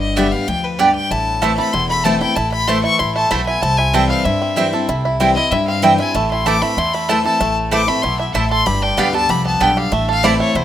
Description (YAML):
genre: bluegrass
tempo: 191 BPM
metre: 4/4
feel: straight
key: A minor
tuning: A4 = 440 Hz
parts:
  - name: clear fiddle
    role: melody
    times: 0.0-10.6 s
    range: B4 to D6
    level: -19 LUFS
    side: left 3 dB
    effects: none
  - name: picked steel-string acoustic guitar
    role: accompaniment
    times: 0.0-10.6 s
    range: E2 to G4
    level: -21 LUFS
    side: left 3 dB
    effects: none
  - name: upright bass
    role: bass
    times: 0.0-10.6 s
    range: E1 to G2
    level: -23 LUFS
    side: equal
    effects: none
  - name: mandolin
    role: stabs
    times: 0.2-10.3 s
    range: A3 to A5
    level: -20 LUFS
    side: right 4 dB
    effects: none
  - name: bluegrass banjo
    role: melody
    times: 1.1-10.6 s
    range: A3 to A4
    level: -21 LUFS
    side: right 5 dB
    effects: none
room: light reverb, studio reverb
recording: rough home demo mix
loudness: -14 LUFS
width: side -11 dB against mid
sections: 0.0-10.6 A section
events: fiddle solo 0.0-10.6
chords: 0.0 G; 1.1 Am; 3.6 C; 6.1 Am; 8.7 G; 9.9 Am